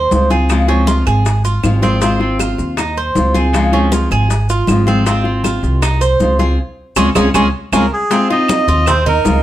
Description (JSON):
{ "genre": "latin, Cuban son and guajira", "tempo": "158 BPM", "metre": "4/4", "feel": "straight", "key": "Ab major", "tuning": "A4 = 440 Hz", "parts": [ { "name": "Cuban tres", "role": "arpeggios", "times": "0.0-9.4 s", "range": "C4 to C5", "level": "-17 LUFS", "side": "right 4 dB", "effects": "none" }, { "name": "upright bass", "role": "bass", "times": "0.0-9.4 s", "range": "Ab1 to Eb2", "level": "-16 LUFS", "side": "equal", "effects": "none" }, { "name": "nylon-string guitar", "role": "accompaniment", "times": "0.1-9.4 s", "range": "Db3 to F4", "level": "-17 LUFS", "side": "left 3 dB", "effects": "none" }, { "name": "bongos", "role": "percussion", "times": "0.1-9.4 s", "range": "none", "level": "-24 LUFS", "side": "left 4 dB", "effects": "none" }, { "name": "congas", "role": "percussion", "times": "0.1-9.4 s", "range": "none", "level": "-22 LUFS", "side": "left 1 dB", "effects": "none" }, { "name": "maracas", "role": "percussion", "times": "0.1-9.4 s", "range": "none", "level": "-30 LUFS", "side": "left 8 dB", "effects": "none" }, { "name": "claves", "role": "percussion", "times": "0.5-9.1 s", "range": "none", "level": "-26 LUFS", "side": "right 8 dB", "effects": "none" }, { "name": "melodica", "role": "melody", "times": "7.7-9.4 s", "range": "Ab4 to Eb5", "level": "-16 LUFS", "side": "equal", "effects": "none" } ], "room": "moderate studio reverb, RT60 0.7 s", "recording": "none", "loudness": "-12 LUFS", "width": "side -13 dB against mid", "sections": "0.0-8.1 A section; 8.1-9.4 B section", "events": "drum fill 6.6-8.1; band accent 6.6-8.1", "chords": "0.0 Ab6; 0.5 Dbmaj7; 2.0 Ab6; 3.5 Dbmaj7; 5.1 Ab6; 6.6 Dbmaj7; 8.1 Ab6" }